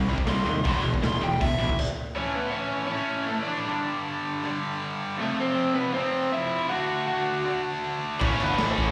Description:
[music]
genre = punk rock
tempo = 159 BPM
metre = 4/4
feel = straight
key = unclear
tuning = A4 = 441 Hz
[part]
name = distorted electric guitar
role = riff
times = 0.0-1.8, 8.2-8.9 s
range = E2 to C4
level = -38 LUFS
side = equal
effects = none
[part]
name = tight distorted guitar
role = riff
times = 0.0-8.9 s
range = E2 to D4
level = -31 LUFS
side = equal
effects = distortion
[part]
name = tight distorted guitar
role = riff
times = 0.0-1.8, 8.2-8.9 s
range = E2 to A3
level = -34 LUFS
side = equal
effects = distortion, slapback echo
[part]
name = fuzz picked electric bass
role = bass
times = 0.0-1.7, 8.2-8.9 s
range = E1 to D#2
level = -31 LUFS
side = equal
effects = overdrive
[part]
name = raw garage drum kit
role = drums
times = 0.2-1.9, 8.2-8.9 s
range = crash cymbal, hi-hat, kick drum, snare drum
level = -31 LUFS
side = equal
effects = none
[part]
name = overdriven semi-hollow guitar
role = melody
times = 0.3-8.9 s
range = A3 to C6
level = -31 LUFS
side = equal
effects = slapback echo, tape echo
[sound]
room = light reverb, studio reverb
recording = live gig heard through the venue's PA, club ambience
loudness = -27 LUFS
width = mono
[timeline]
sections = 0.0-2.2 A section; 2.2-8.9 B section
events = overdriven electric guitar solo 0.0-2.2; stop 1.8-2.2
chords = 0.0 C5; 0.7 E5; 2.2 A; 3.7 G5; 5.2 F; 6.7 D; 8.2 A

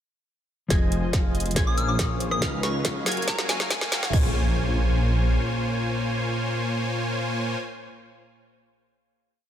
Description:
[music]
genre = future bass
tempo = 140 BPM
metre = 4/4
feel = half-time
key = Bb minor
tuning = A4 = 439 Hz
[part]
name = mellow electric guitar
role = accompaniment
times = 0.7-7.6 s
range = Bb2 to C6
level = -30 LUFS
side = left 2 dB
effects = sidechain pumping, tape echo
[part]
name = Celtic harp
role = arpeggios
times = 0.7-6.4 s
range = Ab4 to Gb5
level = -40 LUFS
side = left 4 dB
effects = none
[part]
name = wide unison pluck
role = arpeggios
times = 0.7-7.6 s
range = F6 to Ab6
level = -37 LUFS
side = right 1 dB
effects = sidechain pumping
[part]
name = soft supersaw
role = riff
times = 0.7-7.6 s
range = F3 to Ab5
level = -29 LUFS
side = equal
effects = sidechain pumping, low-pass filter
[part]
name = wide detuned saw bass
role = bass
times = 0.7-5.4 s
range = F1 to Db2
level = -26 LUFS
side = equal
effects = chorus, sidechain pumping
[part]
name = electronic kick drum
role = drums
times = 0.7-4.2 s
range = none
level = -25 LUFS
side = equal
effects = distortion
[part]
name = trap drum kit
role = drums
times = 0.7-4.2 s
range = crash cymbal, hi-hat, rim click, snare drum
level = -28 LUFS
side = equal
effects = none
[part]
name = riser and impact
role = sound effects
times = 2.5-7.6 s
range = none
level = -34 LUFS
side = equal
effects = none
[part]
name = soft synth bell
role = melody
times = 1.7-4.1 s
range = Ab5 to F6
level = -31 LUFS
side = left 2 dB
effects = chorus, phaser, sidechain pumping
[sound]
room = light reverb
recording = high-pass filter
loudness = -22 LUFS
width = side -10 dB against mid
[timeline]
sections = 0.7-4.1 build; 4.1-7.6 final chord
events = build-up 0.7-4.1; drum fill 0.7-4.1; filter sweep on supersaw synth 0.7-4.1; filter sweep 0.7-4.1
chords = 0.7 Fm7; 1.6 Bbm9; 2.4 Db7; 3.1 Gbmaj7; 4.1 Bbm9

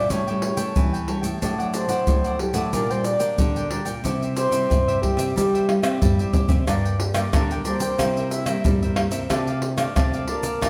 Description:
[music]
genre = samba and choro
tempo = 91 BPM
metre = 4/4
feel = straight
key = F major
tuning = A4 = 440 Hz
[part]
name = breathy flute-like synth lead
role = melody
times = 0.0-10.7 s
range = G4 to E5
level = -27 LUFS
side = equal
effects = chorus
[part]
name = cavaquinho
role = accompaniment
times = 0.0-10.7 s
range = D4 to Bb5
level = -34 LUFS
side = equal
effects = none
[part]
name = nylon-string guitar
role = accompaniment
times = 0.0-10.7 s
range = G2 to F4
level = -32 LUFS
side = equal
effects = none
[part]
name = nylon-string guitar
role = bass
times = 0.0-10.7 s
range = G2 to C4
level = -29 LUFS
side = equal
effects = none
[part]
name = egg shaker, surdo, pandeiro and tamborim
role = percussion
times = 0.1-10.7 s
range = none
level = -26 LUFS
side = equal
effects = none
[sound]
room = wet stone room reverb, RT60 1.3 s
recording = band playing live in one room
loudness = -22 LUFS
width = mono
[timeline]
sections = 0.0-6.7 A section; 6.7-10.7 B section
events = drum fill 5.7-6.7; soft synth lead solo 6.7-10.7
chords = 0.1 A7; 1.4 D/A; 2.7 Gm/Bb; 4.0 C; 6.7 Gm; 8.0 C7; 9.3 F6/C

